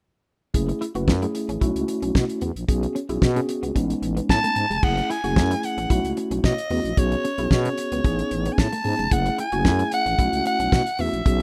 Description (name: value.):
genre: early-eighties boogie funk.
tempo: 112 BPM.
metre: 4/4.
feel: straight.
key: F# dorian.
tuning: A4 = 441 Hz.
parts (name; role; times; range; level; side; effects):
mellow tine electric piano; accompaniment; 0.5-11.4 s; G#3 to B4; -29 LUFS; equal; none.
growling FM bass; bass; 0.5-11.4 s; E#1 to B2; -28 LUFS; equal; none.
damped 70s drum kit; drums; 0.5-11.4 s; crash cymbal, hi-hat, kick drum, snare drum; -24 LUFS; equal; none.
clean electric guitar; riff; 0.7-11.4 s; G#3 to F#4; -35 LUFS; equal; ensemble chorus.
raspy soprano saxophone; melody; 4.3-11.4 s; C#5 to A5; -27 LUFS; equal; none.
room: small room ambience.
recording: rough home demo mix.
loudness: -23 LUFS.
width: mono.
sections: 0.5-4.8 A section; 4.8-11.4 B section.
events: none.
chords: 0.5 F#m7; 1.6 B9sus4; 2.7 E69/B (rootless); 3.8 Amaj9#11; 4.8 F#m7; 5.9 B9sus4; 7.0 E69/B (rootless); 8.0 Amaj9#11; 9.1 F#m7; 10.2 B9sus4.